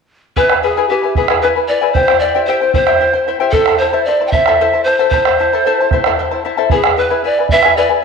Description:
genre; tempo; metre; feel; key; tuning
andean folk, Andean ensemble; 76 BPM (dotted quarters); 6/8; straight; A minor; A4 = 441 Hz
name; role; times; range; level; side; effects
breathy mellow pan flute; melody; 0.4-8.0 s; G4 to G5; -14 LUFS; right 1 dB; none
charango; accompaniment; 0.4-8.0 s; E4 to A5; -15 LUFS; left 7 dB; none
bombo; percussion; 0.4-7.8 s; none; -18 LUFS; right 6 dB; none
room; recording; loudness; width
wet echo chamber reverb, RT60 1.4 s, small room ambience; 1960s-style stereo with parts hard left and right; -11 LUFS; side -5 dB against mid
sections
0.4-8.0 A section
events
none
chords
0.4 E; 2.0 C; 3.5 Am; 6.7 E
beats
| 0.37 1.16 | 1.96 2.75 | 3.54 4.33 | 5.12 5.92 | 6.71 7.50

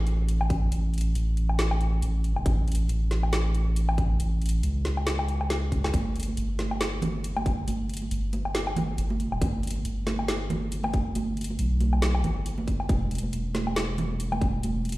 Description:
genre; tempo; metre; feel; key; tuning
deep dubstep; 138 BPM; 4/4; swing 57% on 16ths, half-time; unclear; A4 = 440 Hz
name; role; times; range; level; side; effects
soft dub sub bass; bass; 0.0-15.0 s; E1 to C#2; -26 LUFS; equal; none
garage drum kit; drums; 0.1-15.0 s; hi-hat, snare drum, woodblock; -32 LUFS; left 1 dB; none
electronic kick drum; drums; 0.5-14.5 s; none; -25 LUFS; equal; none
congas; percussion; 5.9-14.7 s; none; -32 LUFS; right 3 dB; dub echo
room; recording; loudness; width
light reverb; played on a big sound system in a bare room, large studio reverb; -24 LUFS; side -18 dB against mid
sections
0.0-15.0 A section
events
drum fill 5.5-5.9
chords
none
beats
0.28 | 0.72 1.15 1.59 2.02 | 2.46 2.89 3.33 3.76 | 4.20 4.63 5.07 5.50 | 5.94 6.37 6.81 7.24 | 7.68 8.11 8.55 8.98 | 9.41 9.85 10.29 10.72 | 11.15 11.59 12.02 12.46 | 12.89 13.33 13.76 14.20 | 14.63

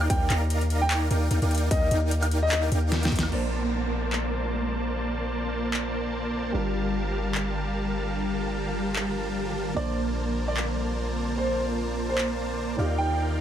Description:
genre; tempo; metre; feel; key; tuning
future bass; 149 BPM; 4/4; swing 56% on 16ths, half-time; Bb major; A4 = 443 Hz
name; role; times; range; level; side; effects
dense compressed supersaw; riff; 0.0-13.4 s; G3 to Bb5; -29 LUFS; right 1 dB; sidechain pumping, low-pass filter
long sustained 808-style bass; bass; 0.0-13.4 s; G1 to Eb2; -28 LUFS; equal; sidechain pumping
dubstep drum kit; drums; 0.0-12.3 s; crash cymbal, handclaps, hi-hat, snare drum, woodblock; -30 LUFS; equal; overdrive
warm concert grand piano; melody; 0.1-2.6, 9.8-13.2 s; C5 to G5; -30 LUFS; equal; sidechain pumping, tape echo
electronic kick drum; drums; 0.1-3.2 s; none; -26 LUFS; equal; overdrive
felt-muted upright piano; accompaniment; 3.3-13.4 s; Bb2 to D5; -37 LUFS; right 3 dB; none
shimmering ambient pad; sustained chords; 4.4-13.4 s; D3 to D5; -38 LUFS; equal; chorus, built-in reverb, phaser, sidechain pumping
downlifter; sound effects; 3.3-6.5 s; none; -37 LUFS; equal; none
room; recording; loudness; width
light reverb; none; -24 LUFS; side -10 dB against mid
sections
0.0-3.3 A section; 3.3-13.4 B section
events
drop 0.0-3.3; drum fill 2.9-3.3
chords
0.0 Ebmaj9; 3.3 Bbmaj9; 6.5 Gm7; 9.8 Bbmaj9; 12.8 Ebmaj9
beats
| 0.10 0.50 0.90 1.31 | 1.71 2.11 2.52 2.92 | 3.32 3.72 4.13 4.53 | 4.93 5.33 5.74 6.14 | 6.54 6.95 7.35 7.75 | 8.15 8.55 8.96 9.36 | 9.76 10.17 10.57 10.97 | 11.37 11.78 12.18 12.58 | 12.98 13.39

